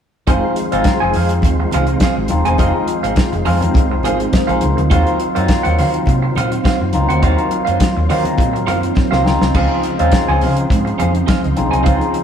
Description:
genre	disco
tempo	104 BPM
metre	4/4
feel	straight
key	unclear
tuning	A4 = 440 Hz
part	barky tine electric piano	accompaniment	0.3-12.2 s	F3 to F5	-19 LUFS	left 1 dB	overdrive, phaser
part	clean electric guitar	accompaniment	0.3-12.2 s	Eb4 to Ab5	-21 LUFS	right 3 dB	none
part	percussive tonewheel organ	sustained chords	0.3-12.2 s	Db3 to C5	-24 LUFS	right 1 dB	chorus vibrato, fast rotary speaker
part	hollow-body short-scale fingered electric bass	bass	0.3-12.0 s	Eb1 to Eb3	-18 LUFS	equal	none
part	damped 70s drum kit	drums	0.3-12.2 s	crash cymbal, hi-hat, kick drum, snare drum	-18 LUFS	equal	none
part	congas	percussion	0.3-12.0 s	none	-27 LUFS	left 2 dB	none
room	moderate stone room reverb, RT60 1.4 s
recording	band playing live in one room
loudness	-13 LUFS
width	side -8 dB against mid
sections	0.3-12.2 A section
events	tine electric piano fill 3.8-4.9; drum fill 9.0-9.5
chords	0.3 Fm7; 4.9 Ebm69; 9.3 Dbmaj9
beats	| 0.28 0.85 1.43 2.01 | 2.59 3.17 3.75 4.33 | 4.91 5.49 6.07 6.65 | 7.23 7.80 8.38 8.96 | 9.54 10.12 10.70 11.28 | 11.86

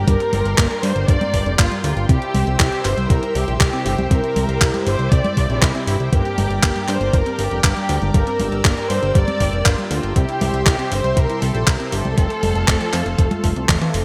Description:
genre	italo disco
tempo	119 BPM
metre	4/4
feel	straight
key	G dorian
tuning	A4 = 440 Hz
part	dark studio violin section	melody	0.0-13.7 s	E4 to D5	-26 LUFS	equal	digital delay
part	lush unison pad	sustained chords	0.0-14.0 s	G4 to E6	-33 LUFS	equal	chorus
part	analog pluck	arpeggios	0.0-14.0 s	F2 to G4	-31 LUFS	equal	chorus, cassette tape, digital delay
part	mellow synth brass	stabs	0.0-14.0 s	G2 to Bb4	-30 LUFS	equal	chorus, phaser, vintage 12-bit sampler grit
part	fat analog bass	bass	0.0-14.0 s	F1 to G2	-24 LUFS	equal	none
part	clean 12-bit digital drum machine	drums	0.1-14.0 s	congas, handclaps, hi-hat, toms	-25 LUFS	equal	overdrive, gated reverb
part	electronic kick drum	drums	0.1-13.8 s	none	-19 LUFS	equal	overdrive
room	moderate lush hall reverb, RT60 2.3 s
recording	bright 1980s-style digital production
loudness	-18 LUFS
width	mono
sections	0.0-14.0 A section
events	drum fill 13.7-14.0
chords	0.0 Gm; 2.1 C; 6.1 Gm; 10.2 C; 12.2 F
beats	| 0.08 0.58 1.08 1.59 | 2.09 2.60 3.10 3.60 | 4.11 4.61 5.12 5.62 | 6.13 6.63 7.13 7.64 | 8.14 8.65 9.15 9.66 | 10.16 10.66 11.17 11.67 | 12.18 12.68 13.19 13.69

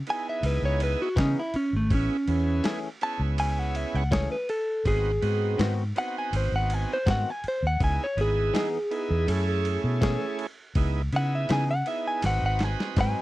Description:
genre	straight-eighth soul blues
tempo	81 BPM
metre	4/4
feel	straight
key	C# minor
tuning	A4 = 440 Hz
part	direct-recorded clean electric guitar	melody	0.1-13.2 s	A3 to A5	-28 LUFS	equal	slapback echo
part	bright tonewheel organ	accompaniment	0.1-13.2 s	A3 to B4	-33 LUFS	right 5 dB	slow rotary speaker, overdrive
part	lo-fi sampler-style drum kit	drums	0.1-13.2 s	kick drum, ride cymbal, snare drum	-32 LUFS	equal	none
part	vintage muted fingered electric bass	bass	0.4-13.1 s	G#1 to C#3	-26 LUFS	equal	none
part	direct-recorded clean electric guitar	stabs	1.2-13.2 s	D#3 to B4	-31 LUFS	left 4 dB	analog chorus
room	little or no reverb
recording	dry, close 1970s-style studio recording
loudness	-24 LUFS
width	side -17 dB against mid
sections	0.0-13.2 A section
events	clean electric guitar solo 0.0-13.2; drum fill 12.2-13.2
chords	0.0 C#m9; 1.9 Amaj7; 4.9 G#7#9; 7.8 C#m9 (rootless); 9.3 F#m9; 10.8 C#m9; 12.2 G#7#9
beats	0.43 1.17 | 1.91 2.65 3.38 4.12 | 4.86 5.59 6.33 7.07 | 7.81 8.54 9.28 10.02 | 10.76 11.50 12.23 12.97

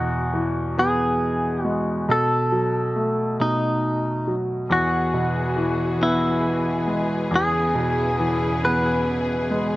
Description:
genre	pop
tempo	46 BPM (dotted quarters)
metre	6/8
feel	straight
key	E major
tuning	A4 = 440 Hz
part	clean electric guitar	melody	0.0-9.6 s	D#4 to B4	-23 LUFS	equal	slapback echo
part	clear concert grand piano	accompaniment	0.0-9.8 s	E2 to B3	-23 LUFS	equal	none
part	rich studio string section	sustained chords	4.7-9.8 s	E2 to G#4	-28 LUFS	equal	none
room	little or no reverb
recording	recorded outdoors, with no room sound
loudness	-20 LUFS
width	side -17 dB against mid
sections	0.0-9.8 A section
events	none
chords	0.0 E; 2.1 B7; 4.7 Eadd9; 7.3 C#m7/E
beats	0.77 | 2.08 3.39 | 4.70 6.01 | 7.32 8.62

